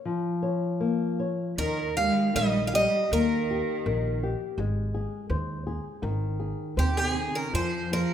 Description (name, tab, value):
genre	fado-style ballad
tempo	77-83 BPM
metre	2/4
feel	rubato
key	Ab major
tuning	A4 = 436 Hz
part	flamenco guitar	accompaniment	0.0-8.1 s	Eb3 to Db5	-29 LUFS	left 4 dB	none
part	picked twelve-string acoustic guitar	melody	1.6-4.2, 6.8-8.1 s	G4 to F5	-27 LUFS	right 1 dB	none
part	rich cello	second line	1.6-4.2, 6.8-8.1 s	C3 to Ab3	-30 LUFS	right 4 dB	none
part	upright bass	bass	1.6-8.0 s	Ab1 to F2	-30 LUFS	right 1 dB	none
room	moderate recital hall reverb, RT60 1.7 s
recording	minimal, uncompressed stereo recording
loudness	-25 LUFS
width	side -9 dB against mid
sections	0.0-7.5 A section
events	none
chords	0.0 Bbm; 1.6 Eb; 4.6 Ab; 7.5 Fm